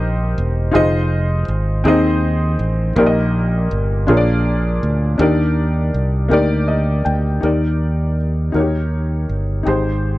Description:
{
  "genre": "slow gospel",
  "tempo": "54 BPM (dotted quarters)",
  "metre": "6/8",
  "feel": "straight",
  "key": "Eb major",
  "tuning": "A4 = 440 Hz",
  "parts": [
    { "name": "warm upright piano", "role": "accompaniment", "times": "0.0-10.2 s", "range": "Ab2 to G5", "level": "-18 LUFS", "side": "left 1 dB", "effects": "none" },
    { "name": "fingered electric bass", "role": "bass", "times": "0.0-10.2 s", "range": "Fb1 to Eb2", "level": "-17 LUFS", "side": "right 1 dB", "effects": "none" }
  ],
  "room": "little or no reverb",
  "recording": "dry, close 1970s-style studio recording",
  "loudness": "-15 LUFS",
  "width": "side -17 dB against mid",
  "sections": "0.0-7.4 A section; 7.4-10.2 B section",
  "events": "upright piano fill 6.3-7.4",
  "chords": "0.0 Cm7; 0.7 Fm7; 1.9 Ab/Eb; 3.0 Eb/Bb; 4.1 Bb7; 5.2 Ebmaj7; 8.5 Eb7; 9.7 Abmaj7",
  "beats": "| 0.75 1.86 | 2.97 4.08 | 5.20 6.31 | 7.43 8.55 | 9.66"
}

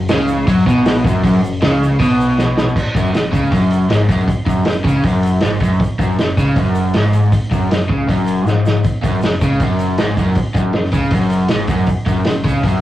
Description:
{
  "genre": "garage rock duo or trio",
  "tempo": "158 BPM",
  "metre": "4/4",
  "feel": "straight",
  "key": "unclear",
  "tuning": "A4 = 439 Hz",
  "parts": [
    { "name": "crunchy overdriven guitar", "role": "riff", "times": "0.0-12.8 s", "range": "F#2 to F#3", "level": "-15 LUFS", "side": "equal", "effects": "none" },
    { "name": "growling picked electric bass", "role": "bass", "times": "0.0-12.8 s", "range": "F#1 to F#2", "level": "-24 LUFS", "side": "equal", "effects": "overdrive" },
    { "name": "vintage drum kit", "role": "drums", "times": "0.1-12.7 s", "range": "crash cymbal, hi-hat, kick drum, snare drum", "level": "-17 LUFS", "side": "right 1 dB", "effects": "none" },
    { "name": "egg shaker", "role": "percussion", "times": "0.1-12.7 s", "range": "none", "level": "-47 LUFS", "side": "right 2 dB", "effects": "none" }
  ],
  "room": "wet small room reverb, RT60 0.5 s",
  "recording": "rough rehearsal-room recording, warm saturation, cassette tape",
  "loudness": "-13 LUFS",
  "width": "side -14 dB against mid",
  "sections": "0.0-2.8 A section; 2.8-12.8 B section",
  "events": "drum fill 2.4-2.8, 8.5-8.9",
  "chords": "0.0 F#5",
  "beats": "0.10 0.48 0.86 | 1.24 1.62 2.00 2.38 | 2.76 3.14 3.52 3.90 | 4.29 4.67 5.05 5.43 | 5.81 6.19 6.58 6.96 | 7.33 7.71 8.09 8.47 | 8.85 9.23 9.61 9.99 | 10.37 10.75 11.13 11.51 | 11.89 12.27 12.64"
}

